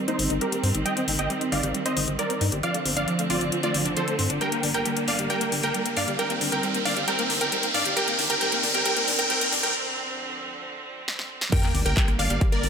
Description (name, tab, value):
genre	uplifting trance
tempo	135 BPM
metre	4/4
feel	straight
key	G minor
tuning	A4 = 440 Hz
part	rich chamber string section	sustained chords	0.0-12.7 s	D3 to C4	-31 LUFS	right 2 dB	sidechain pumping
part	analog pluck	arpeggios	0.0-12.7 s	F3 to G4	-31 LUFS	left 2 dB	lush chorus, sidechain pumping, dub echo
part	riser and sub drop	sound effects	2.1-12.7 s	none	-29 LUFS	equal	none
part	supersaw stab	melody	0.1-12.7 s	Eb4 to G5	-27 LUFS	right 1 dB	vintage 12-bit sampler grit, sidechain pumping, low-pass filter, dub echo
part	big-room dance drum kit	drums	0.1-12.7 s	crash cymbal, handclaps, hi-hat, rim click, snare drum	-28 LUFS	left 3 dB	none
part	gritty driven synth bass	bass	0.2-12.7 s	G1 to G2	-30 LUFS	equal	sidechain pumping
part	plucky unison lead	second line	11.5-12.7 s	D5 to G5	-33 LUFS	left 1 dB	sidechain pumping
part	electronic kick drum	drums	11.5-12.5 s	none	-22 LUFS	equal	none
room	moderate lush hall reverb, RT60 2.1 s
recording	high-pass filter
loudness	-22 LUFS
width	side -7 dB against mid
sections	0.0-11.5 A section; 11.5-12.7 B section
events	build-up 0.0-11.5; filter sweep on supersaw synth 0.0-11.5; filter sweep on synth pluck 0.0-11.5; filter sweep 0.0-11.5; riser 2.1-9.7; break 9.7-11.5; drum fill 11.1-11.5; drop 11.5-12.7; impact 11.5-12.7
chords	0.0 Eb6/G; 0.9 Cm/G; 2.6 Dm7/G; 4.4 Gm; 6.2 Eb6/G; 9.7 Dm7; 11.5 Gm